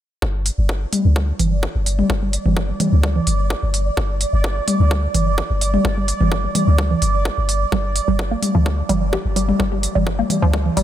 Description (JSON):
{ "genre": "minimal techno", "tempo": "128 BPM", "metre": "4/4", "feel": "straight", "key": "unclear", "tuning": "A4 = 435 Hz", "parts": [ { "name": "punchy sub bass", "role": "bass", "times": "0.2-10.8 s", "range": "G1 to D2", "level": "-18 LUFS", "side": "equal", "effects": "sidechain pumping" }, { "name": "electronic kick drum", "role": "drums", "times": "0.2-10.6 s", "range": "none", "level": "-27 LUFS", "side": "equal", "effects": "high-pass filter on kick, high-pass filter on room" }, { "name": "bubbling stepped-filter texture", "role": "texture", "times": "0.6-10.8 s", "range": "D5", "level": "-26 LUFS", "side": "right 4 dB", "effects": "chorus, built-in reverb, sidechain pumping" }, { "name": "electronic hi-hat", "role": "drums", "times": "0.5-10.8 s", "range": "none", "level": "-24 LUFS", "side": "right 2 dB", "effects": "none" }, { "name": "electronic toms and congas", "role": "percussion", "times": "0.9-10.7 s", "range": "none", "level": "-22 LUFS", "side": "left 1 dB", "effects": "analog delay" }, { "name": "hollow square pluck", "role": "riff", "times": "7.7-10.8 s", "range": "F3 to G4", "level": "-22 LUFS", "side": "right 1 dB", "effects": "chorus, phaser, sidechain pumping, ping-pong delay" } ], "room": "light reverb", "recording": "none", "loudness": "-16 LUFS", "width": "side -12 dB against mid", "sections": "0.2-10.8 A section", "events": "filter sweep on sub bass 0.2-10.8", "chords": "0.2 G5" }